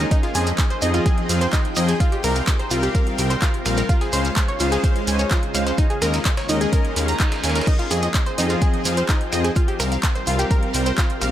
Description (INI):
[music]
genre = progressive house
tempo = 127 BPM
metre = 4/4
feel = straight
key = F minor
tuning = A4 = 437 Hz
[part]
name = shimmering ambient pad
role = sustained chords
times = 0.0-11.3 s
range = C3 to G5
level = -29 LUFS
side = equal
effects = chorus, built-in reverb, sidechain pumping
[part]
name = analog pluck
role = arpeggios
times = 0.0-11.3 s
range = Eb4 to Bb6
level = -26 LUFS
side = equal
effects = chorus, cassette tape, sidechain pumping, dub echo
[part]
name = fat analog bass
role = bass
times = 0.0-11.3 s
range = Bb1 to F2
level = -23 LUFS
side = equal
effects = sidechain pumping
[part]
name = breakbeat sampler-style drum kit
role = drums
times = 0.0-11.3 s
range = hi-hat, snare drum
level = -36 LUFS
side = equal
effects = none
[part]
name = deep house drum kit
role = drums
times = 0.0-11.3 s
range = crash cymbal, finger snaps, handclaps, hi-hat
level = -28 LUFS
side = equal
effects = overdrive, sidechain pumping on hats, sidechain pumping on cymbals
[part]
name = shekere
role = percussion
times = 0.0-11.3 s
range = none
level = -30 LUFS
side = right 4 dB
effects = none
[part]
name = electronic kick drum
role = drums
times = 0.1-11.1 s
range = none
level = -19 LUFS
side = equal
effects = overdrive
[part]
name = soft supersaw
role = stabs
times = 0.3-11.3 s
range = F3 to Ab5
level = -25 LUFS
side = left 2 dB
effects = wide subtle chorus, sidechain pumping, dub echo
[part]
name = reverse cymbal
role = sound effects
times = 7.0-7.7 s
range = none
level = -33 LUFS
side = right 4 dB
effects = none
[sound]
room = light reverb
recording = none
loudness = -18 LUFS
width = side -12 dB against mid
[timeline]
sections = 0.0-11.3 A section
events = reverse cymbal 7.0-7.7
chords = 0.1 Fm7; 2.0 C7sus4; 3.9 Dbmaj7; 5.8 Eb7sus4; 7.7 Fm7; 9.6 C7sus4